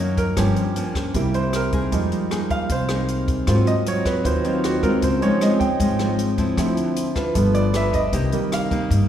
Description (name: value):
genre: bossa nova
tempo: 155 BPM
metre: 4/4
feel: straight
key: Ab major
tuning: A4 = 440 Hz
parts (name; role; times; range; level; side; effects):
- clear grand piano; accompaniment; 0.0-9.1 s; D#3 to G5; -23 LUFS; right 4 dB; none
- nylon-string guitar; accompaniment; 0.0-9.1 s; F#2 to Cb5; -22 LUFS; left 2 dB; none
- upright bass; bass; 0.0-9.1 s; G1 to Ab2; -24 LUFS; left 1 dB; none
- compact cocktail drum kit; drums; 0.2-9.0 s; hi-hat, kick drum, rim click; -28 LUFS; equal; none
room: wet scoring stage reverb, RT60 1.7 s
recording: recorded in a church or concert hall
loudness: -18 LUFS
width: side -10 dB against mid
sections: 0.0-9.1 A section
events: grand piano solo 0.0-9.1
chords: 0.4 Gm7b5; 1.1 C7; 1.9 Fm11; 3.5 Ab13; 5.0 Dbmaj7; 6.6 Dm9; 7.4 G7; 8.1 Cm7